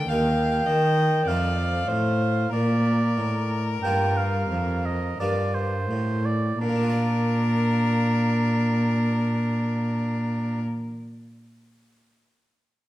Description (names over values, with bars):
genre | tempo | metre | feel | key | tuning
classical, baroque-style sonata movement with continuo | 42-52 BPM | 3/4 | straight | Bb major | A4 = 440 Hz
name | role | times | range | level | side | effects
rich violin | melody | 0.0-10.6 s | Bb4 to F5 | -32 LUFS | left 5 dB | none
harpsichord | accompaniment | 0.0-10.9 s | Eb2 to D5 | -30 LUFS | left 2 dB | none
warm cello | bass | 0.0-10.6 s | Eb2 to Eb3 | -24 LUFS | equal | none
clear oboe | second line | 0.1-10.6 s | D4 to G5 | -28 LUFS | right 3 dB | none
room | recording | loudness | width
wet recital hall reverb, RT60 1.5 s | dark, warm production | -21 LUFS | side -15 dB against mid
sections
0.0-6.6 A section; 6.6-10.8 B section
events
slowing down 0.0-6.6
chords
0.1 Eb; 1.3 F7; 2.5 Bb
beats
0.10 1.28 | 2.53 3.84 5.20 | 6.61 8.01 9.40